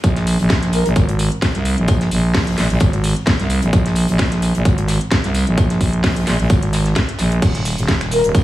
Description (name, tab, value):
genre	bass house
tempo	130 BPM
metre	4/4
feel	swing 55% on 16ths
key	unclear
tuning	A4 = 441 Hz
part	growling FM bass	bass	0.0-8.4 s	Eb1 to Db2	-17 LUFS	equal	sidechain pumping
part	electronic kick drum	drums	0.0-8.4 s	none	-18 LUFS	equal	none
part	garage drum kit	drums	0.0-8.4 s	crash cymbal, finger snaps, hi-hat, shaker, snare drum	-23 LUFS	equal	none
part	modern studio drum kit	drums	0.0-8.4 s	hi-hat, snare drum, tambourine	-31 LUFS	left 3 dB	high-pass filter on hats, high-pass filter on snare, high-pass filter on perc, high-pass filter on room
part	breathy flute-like synth lead	melody	0.7-0.9, 8.1-8.3 s	Bb4	-19 LUFS	left 1 dB	ensemble chorus, vintage 12-bit sampler grit
room	little or no reverb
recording	small room reverb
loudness	-14 LUFS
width	side -15 dB against mid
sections	0.0-8.4 A section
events	none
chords	none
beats	| 0.04 0.50 0.96 1.42 | 1.88 2.35 2.81 3.27 | 3.73 4.19 4.65 5.12 | 5.58 6.04 6.50 6.96 | 7.42 7.88 8.35